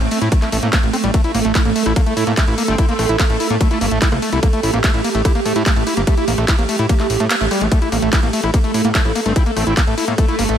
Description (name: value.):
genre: psychedelic trance.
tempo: 146 BPM.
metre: 4/4.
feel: straight.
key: A phrygian.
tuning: A4 = 440 Hz.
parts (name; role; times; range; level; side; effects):
pulsing gated texture; sustained chords; 0.0-10.6 s; A3 to A4; -21 LUFS; right 4 dB; chorus, built-in reverb, vintage 12-bit sampler grit, sidechain pumping.
fat analog bass; bass; 0.0-10.6 s; G1 to A2; -20 LUFS; equal; none.
drum and bass drum kit; drums; 0.0-10.6 s; handclaps, hi-hat, ride cymbal, rim click; -23 LUFS; left 1 dB; overdrive.
screaming distorted acid line; riff; 0.1-10.6 s; G3 to E4; -21 LUFS; left 1 dB; distortion, chorus, auto-pan, sidechain pumping, ping-pong delay.
electronic kick drum; drums; 0.3-10.3 s; none; -16 LUFS; equal; overdrive.
metallic wobble bass; second line; 2.7-3.9, 9.3-10.6 s; A3 to C4; -30 LUFS; left 2 dB; ensemble chorus, sidechain pumping, high-pass filter, ping-pong delay.
room: digital ambience.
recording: none.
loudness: -14 LUFS.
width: side -9 dB against mid.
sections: 0.0-7.7 A section; 7.7-10.6 A section.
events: drop 0.0-7.7, 7.7-10.6; kick drops out 7.3-7.7; band accent 7.3.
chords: 0.0 A5.